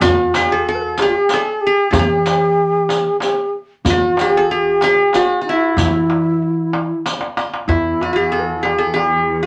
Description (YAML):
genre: Arabic maqam ensemble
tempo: 94 BPM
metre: 3/4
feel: straight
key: unclear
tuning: A4 = 440 Hz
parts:
  - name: qanun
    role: melody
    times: 0.0-9.5 s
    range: E4 to A4-40c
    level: -19 LUFS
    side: equal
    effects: none
  - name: breathy reedy ney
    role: second line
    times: 0.0-9.5 s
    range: E4 to B4+41c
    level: -20 LUFS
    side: equal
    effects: none
  - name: upright bass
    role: bass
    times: 0.0-8.8 s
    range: E2 to E3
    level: -26 LUFS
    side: equal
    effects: none
  - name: darbuka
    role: percussion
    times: 0.0-9.1 s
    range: none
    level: -25 LUFS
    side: equal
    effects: none
  - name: riq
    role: percussion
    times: 0.0-7.5 s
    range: none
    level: -25 LUFS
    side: equal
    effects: none
  - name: rich symphonic cello section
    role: drone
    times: 7.7-9.5 s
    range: E2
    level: -30 LUFS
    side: equal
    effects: none
room: moderate studio reverb, RT60 0.5 s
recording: none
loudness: -16 LUFS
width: mono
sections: 0.0-7.7 A section; 7.7-9.5 B section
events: drum fill 7.0-7.7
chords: none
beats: | 0.02 0.66 1.30 | 1.94 2.58 3.22 | 3.86 4.50 5.13 | 5.77 6.41 7.05 | 7.69 8.33 8.97